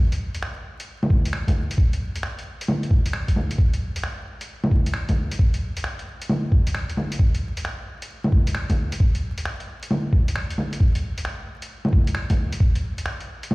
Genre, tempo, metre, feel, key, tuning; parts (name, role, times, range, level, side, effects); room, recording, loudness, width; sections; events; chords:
future garage; 133 BPM; 4/4; swing 66% on 16ths
lo-fi sampler-style drum kit; drums; 0.1-13.5 s; bongos, finger snaps, hi-hat; -27 LUFS; equal
electronic kick drum; drums; 1.1-12.7 s; -18 LUFS; equal
light reverb; played on a big sound system in a bare room, large studio reverb, vinyl crackle; -21 LUFS; side -24 dB against mid
0.0-13.5 A section